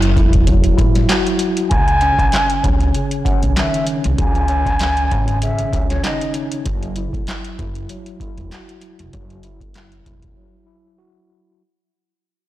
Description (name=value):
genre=hip hop, boom-bap hip-hop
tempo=97 BPM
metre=4/4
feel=swing 55% on 16ths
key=unclear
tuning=A4 = 441 Hz
part: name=mellow tine electric piano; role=accompaniment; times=0.0-11.6 s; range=C#3 to F#4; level=-22 LUFS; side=equal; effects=medium stereo tremolo, cassette tape, high-pass filter, low-pass filter
part: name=upright bass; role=bass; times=0.0-10.3 s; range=E1 to C#2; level=-19 LUFS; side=equal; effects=none
part: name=booming analog drum machine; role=drums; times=0.0-10.4 s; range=handclaps, hi-hat, kick drum, snare drum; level=-19 LUFS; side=equal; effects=none
part: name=breathy mellow concert flute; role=melody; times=1.7-6.3 s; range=C#5 to G#5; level=-20 LUFS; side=equal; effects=high-pass filter, low-pass filter, tape echo
room=light reverb, studio reverb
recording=blown-out, overdriven recording, overdrive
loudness=-14 LUFS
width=side -15 dB against mid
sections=0.0-11.6 A section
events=fade-out 0.0-11.6; break 10.4-11.6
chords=0.0 F#m7; 1.7 C#sus2; 6.7 Esus2